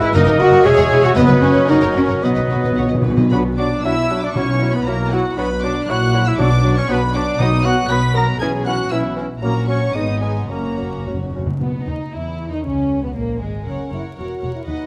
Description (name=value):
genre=quick classical-period movement for symphony orchestra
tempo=117 BPM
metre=2/4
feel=rubato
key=B major, B minor from 3.3 s, B major from 7.4 s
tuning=A4 = 439 Hz
part: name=rich studio violin section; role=melody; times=0.0-14.9 s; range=G#3 to B6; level=-32 LUFS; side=equal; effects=none
part: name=clear clarinet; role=second line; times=0.0-11.5 s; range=B3 to C#5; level=-31 LUFS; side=equal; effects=none
part: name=concert flute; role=second line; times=0.0-11.1 s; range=F#4 to B5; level=-28 LUFS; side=equal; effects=none
part: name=dark cor anglais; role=second line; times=0.0-11.1 s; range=F#3 to E5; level=-29 LUFS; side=equal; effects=none
part: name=warm chamber violin section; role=second line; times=0.0-14.9 s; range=G#3 to D#5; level=-31 LUFS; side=equal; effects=none
part: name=mellow bassoon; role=accompaniment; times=0.0-11.5 s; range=E3 to A#3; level=-27 LUFS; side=equal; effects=none
part: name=rich studio viola section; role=accompaniment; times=0.0-14.9 s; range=F#3 to B4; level=-28 LUFS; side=equal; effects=none
part: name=mellow French horn section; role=sustained chords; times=0.0-14.9 s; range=E3 to G#4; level=-27 LUFS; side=equal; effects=none
part: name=dark studio cello section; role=bass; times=0.0-14.8 s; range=D#2 to G#4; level=-24 LUFS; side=equal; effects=none
part: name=warm studio double bass section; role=bass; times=0.0-14.8 s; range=E1 to E2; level=-24 LUFS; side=equal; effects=none
part: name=timpani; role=percussion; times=0.2-8.1, 10.5-12.1 s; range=F#2 to B2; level=-24 LUFS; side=equal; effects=none
part: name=mellow trumpet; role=stabs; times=3.3-11.1 s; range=F#4 to B5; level=-28 LUFS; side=equal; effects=none
room=moderate scoring stage reverb, RT60 1.7 s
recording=vinyl crackle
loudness=-17 LUFS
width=mono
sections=0.0-3.3 A section; 3.3-11.6 B section; 11.6-14.9 A section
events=timpani fill 2.2-3.3, 10.5-11.6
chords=0.2 D#m/F#; 0.7 C#m/E; 1.2 B/F#; 1.7 F#; 2.2 B; 3.3 Bm; 4.4 Bsus24; 5.4 Bm; 5.9 F#7/A#; 6.4 Bm; 7.4 B5; 8.4 C#m7/B; 9.4 F#/A#; 10.0 G#m; 10.5 F#; 11.6 B; 12.1 N.C.; 12.6 G#sus24; 13.7 F#; 14.2 F#7/E